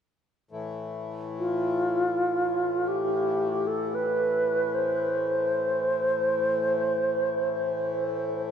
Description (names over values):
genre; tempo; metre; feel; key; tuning
world meditative, free-time meditation music; free time; none; none; A minor; A4 = 440 Hz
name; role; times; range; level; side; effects
hand-pumped harmonium; drone; 0.5-8.5 s; A2 to E3; -33 LUFS; left 4 dB; none
reedy alto flute; melody; 1.4-8.5 s; F4 to C5; -24 LUFS; right 1 dB; tape echo
room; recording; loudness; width
wet huge ambient reverb, RT60 4.0 s; none; -24 LUFS; side -8 dB against mid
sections
0.5-8.5 A section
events
none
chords
none